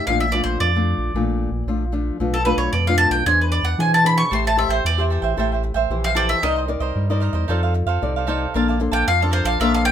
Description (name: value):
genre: samba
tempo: 113 BPM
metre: 4/4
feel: straight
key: unclear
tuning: A4 = 441 Hz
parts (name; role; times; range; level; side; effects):
- bowl-back mandolin; melody; 0.0-9.9 s; A4 to Db6; -19 LUFS; equal; none
- nylon-string guitar; accompaniment; 0.0-9.9 s; Bb2 to D5; -24 LUFS; left 4 dB; none
- warm sub bass; bass; 0.1-9.9 s; A1 to E3; -22 LUFS; right 1 dB; none
- cavaquinho; accompaniment; 4.3-9.9 s; Eb4 to A5; -25 LUFS; right 8 dB; none
room: moderate studio ambience, RT60 0.5 s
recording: minimal, uncompressed stereo recording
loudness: -17 LUFS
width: side -9 dB against mid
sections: 0.0-9.9 A section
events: mandolin solo 0.0-9.9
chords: 0.1 Bbmaj7; 2.2 Bm7b5; 3.3 E7b13; 4.3 Am7; 6.4 Cm9; 7.5 F6; 8.6 Bbmaj9